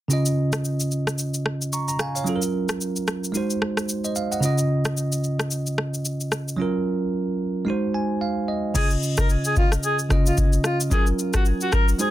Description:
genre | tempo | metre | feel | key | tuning
afrobeats | 111 BPM | 4/4 | swing 58% on 16ths | Db major | A4 = 440 Hz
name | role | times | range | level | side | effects
bell-like tine electric piano | accompaniment | 0.1-12.1 s | Db3 to Db6 | -23 LUFS | right 1 dB | none
booming analog drum machine | drums | 0.1-12.1 s | crash cymbal, kick drum, rim click, shaker | -23 LUFS | left 1 dB | overdrive
warm alto saxophone | melody | 8.8-12.1 s | F4 to Bb4 | -26 LUFS | left 1 dB | digital delay
room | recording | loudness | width
little or no reverb | dense, heavily limited modern master | -21 LUFS | side -14 dB against mid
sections
0.1-8.8 A section; 8.8-12.1 B section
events
tine electric piano fill 7.7-8.8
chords
0.1 Dbadd9; 2.3 Gbmaj7; 3.3 Ab7; 4.4 Dbadd9; 6.6 Gbmaj7; 7.7 Ab7; 8.8 Dbadd9; 10.9 Gbmaj7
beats
| 0.11 0.65 1.19 1.73 | 2.27 2.81 3.35 3.89 | 4.43 4.97 5.51 6.05 | 6.59 7.13 7.67 8.21 | 8.75 9.29 9.84 10.38 | 10.92 11.46 12.00

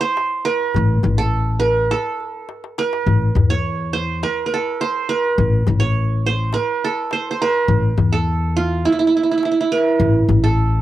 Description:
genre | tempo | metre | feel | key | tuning
Arabic maqam ensemble | 104 BPM | 4/4 | straight | A maqam saba | A4 = 440 Hz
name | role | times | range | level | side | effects
qanun | melody | 0.0-10.8 s | E4 to C#5 | -19 LUFS | right 4 dB | cassette tape
darbuka | percussion | 0.2-10.5 s | none | -21 LUFS | left 4 dB | none
upright bass | bass | 0.8-10.8 s | A1 to E2 | -18 LUFS | left 1 dB | none
room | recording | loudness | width
moderate booth ambience, RT60 0.2 s | home recording on cassette | -16 LUFS | side -13 dB against mid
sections
0.0-10.8 A section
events
drum fill 2.5-3.1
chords
none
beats
0.17 | 0.75 1.33 1.91 2.49 | 3.07 3.65 4.23 4.80 | 5.38 5.96 6.54 7.11 | 7.69 8.27 8.85 9.42 | 10.00 10.58

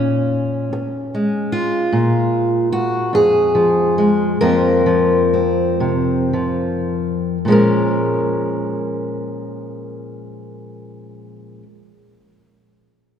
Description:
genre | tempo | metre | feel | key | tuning
folk, solo fingerstyle acoustic guitar | 34-50 BPM (dotted quarters) | 6/8 | rubato | Bb minor | A4 = 440 Hz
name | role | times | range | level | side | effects
fingerpicked steel-string acoustic guitar | solo | 0.0-11.7 s | F2 to Bb4 | -16 LUFS | equal | none
room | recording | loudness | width
wet church reverb, RT60 3.0 s | recorded in a church or concert hall | -15 LUFS | side -8 dB against mid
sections
0.0-1.9 A section; 1.9-7.4 B section; 7.4-10.9 C section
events
slowing down 1.9-7.4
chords
0.0 Bb5; 4.4 Fsus4; 7.4 Bbm7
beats
0.71 | 1.92 3.14 | 4.40 5.81 | 7.44 9.18

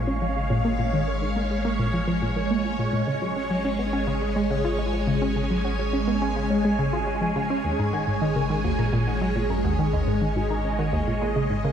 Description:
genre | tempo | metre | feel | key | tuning
ambient, sequencer-driven space music | 105 BPM | 4/4 | straight | unclear | A4 = 440 Hz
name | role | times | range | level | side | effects
phased string machine | sustained chords | 0.0-11.7 s | G#3 to G#5 | -26 LUFS | right 1 dB | ensemble chorus, phaser
analog pluck | riff | 0.0-11.7 s | D#2 to E#4 | -26 LUFS | equal | chorus, cassette tape, analog delay
warm sub bass | bass | 0.0-11.7 s | G#1 | -30 LUFS | equal | none
bubbling stepped-filter texture | texture | 0.0-11.7 s | C#4 to C#5 | -35 LUFS | right 2 dB | chorus, built-in reverb
warbly dusty pluck | arpeggios | 0.1-11.7 s | E#4 to A#5 | -40 LUFS | moving between left 8 dB and right 3 dB | none
room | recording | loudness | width
wet scoring stage reverb, RT60 2.0 s, digital ambience | none | -22 LUFS | side -8 dB against mid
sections
0.0-11.7 A section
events
filter sweep on synth arpeggio sound 0.0-11.7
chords
0.0 A#m7/G#; 3.1 C#sus4/G#; 7.6 D#m/G#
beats
0.22 | 0.79 1.36 1.93 2.50 | 3.07 3.65 4.22 4.79 | 5.36 5.93 6.50 7.07 | 7.65 8.22 8.79 9.36 | 9.93 10.50 11.07 11.65

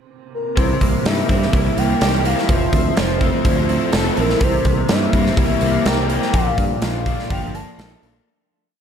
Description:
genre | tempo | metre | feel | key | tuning
rock, shoegaze and dream pop | 125 BPM | 4/4 | straight | C mixolydian | A4 = 440 Hz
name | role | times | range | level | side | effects
pure breathy sine lead | melody | 0.3-8.0 s | Bb4 to A5 | -24 LUFS | equal | chorus, phaser, tape echo
electric guitar at the edge of break-up | arpeggios | 0.6-8.3 s | E3 to D4 | -26 LUFS | left 1 dB | ensemble chorus, tape echo
direct-recorded clean electric guitar | riff | 0.6-8.3 s | Bb2 to Bb4 | -25 LUFS | right 10 dB | reverse reverb
raw garage guitar | riff | 0.6-8.3 s | Bb2 to Bb4 | -24 LUFS | left 9 dB | overdrive, ensemble chorus
growling fingered electric bass | bass | 0.6-8.2 s | F1 to G2 | -22 LUFS | equal | overdrive
big rock drum kit | drums | 0.6-8.1 s | hi-hat, kick drum, snare drum | -20 LUFS | equal | none
room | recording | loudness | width
moderate plate reverb, RT60 2.5 s | dreamy mix soaked in reverb | -15 LUFS | side -8 dB against mid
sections
0.0-0.6 pickup bar; 0.6-8.3 verse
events
fade-out 6.3-8.3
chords
0.0 N.C.; 0.6 C7; 2.5 Fmaj7; 4.4 C7; 6.3 Bbmaj7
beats
0.10 | 0.58 1.06 1.54 2.02 | 2.50 2.98 3.46 3.94 | 4.42 4.90 5.38 5.86 | 6.34 6.82 7.31 7.79

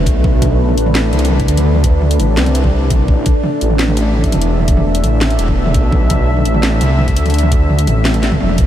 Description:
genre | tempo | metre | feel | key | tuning
half-time drum and bass | 169 BPM | 4/4 | half-time | A minor | A4 = 440 Hz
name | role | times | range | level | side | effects
deep dark ambient pad | sustained chords | 0.0-8.7 s | A3 to E5 | -18 LUFS | equal | chorus, built-in reverb, sidechain pumping
dark detuned saw bass | bass | 0.0-8.7 s | E1 to D2 | -14 LUFS | equal | none
drum and bass drum kit | drums | 0.1-8.7 s | hi-hat, snare drum, toms | -19 LUFS | right 1 dB | none
electronic kick drum | drums | 0.1-8.7 s | none | -14 LUFS | equal | none
room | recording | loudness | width
light reverb | none | -11 LUFS | side -11 dB against mid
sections
0.0-8.7 A section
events
drum fill 8.2-8.7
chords
0.0 Am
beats
| 0.24 0.60 0.95 1.31 | 1.66 2.02 2.37 2.73 | 3.08 3.44 3.79 4.15 | 4.50 4.86 5.21 5.57 | 5.92 6.28 6.63 6.99 | 7.34 7.70 8.05 8.41

